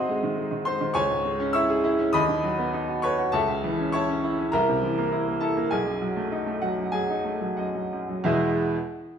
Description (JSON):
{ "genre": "classical, virtuoso piano study", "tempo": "86-105 BPM", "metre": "4/4", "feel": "rubato", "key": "unclear", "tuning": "A4 = 439 Hz", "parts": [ { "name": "bright baby grand piano", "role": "solo", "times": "0.0-8.8 s", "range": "B1 to E6", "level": "-23 LUFS", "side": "equal", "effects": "none" } ], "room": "wet stone room reverb, RT60 1.2 s", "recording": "minimal, uncompressed stereo recording", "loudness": "-23 LUFS", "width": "side -8 dB against mid", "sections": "0.0-8.3 A section", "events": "slowing down 2.1-8.3", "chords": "0.0 G#7; 1.0 C#m; 2.1 B/D#; 3.3 A/C#; 4.5 C7; 5.7 B7; 8.3 E" }